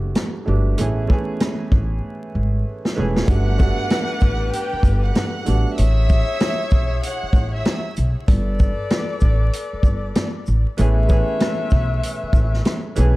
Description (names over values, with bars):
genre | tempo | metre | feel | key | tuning
hip hop, boom-bap hip-hop | 96 BPM | 4/4 | swing 61% on 16ths | A major | A4 = 436 Hz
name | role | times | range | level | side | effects
warm grand piano | accompaniment | 0.0-5.8, 10.8-13.2 s | E3 to G#4 | -26 LUFS | right 3 dB | cassette tape
upright bass | bass | 0.0-13.1 s | E1 to B1 | -19 LUFS | equal | none
vintage drum kit | drums | 0.2-13.1 s | hi-hat, kick drum, rim click, shaker, snare drum | -19 LUFS | equal | none
dark chamber violin section | melody | 3.3-7.8 s | G4 to F#6 | -27 LUFS | right 1 dB | digital delay
warm saxophone section | stabs | 3.3-12.9 s | D4 to E5 | -28 LUFS | left 4 dB | digital delay
room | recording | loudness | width
studio ambience | dark, warm production, vinyl crackle | -17 LUFS | side -19 dB against mid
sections
0.0-3.3 A section; 3.3-13.2 B section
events
drum fill 2.0-3.3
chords
0.0 Gmaj9; 0.8 Amaj9; 3.3 Gmaj9; 5.8 Amaj9; 8.3 Gadd9; 10.8 Amaj9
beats
0.16 | 0.78 1.41 2.03 2.66 | 3.28 3.91 4.53 5.16 | 5.78 6.41 7.03 7.66 | 8.28 8.91 9.53 10.16 | 10.78 11.41 12.03 12.66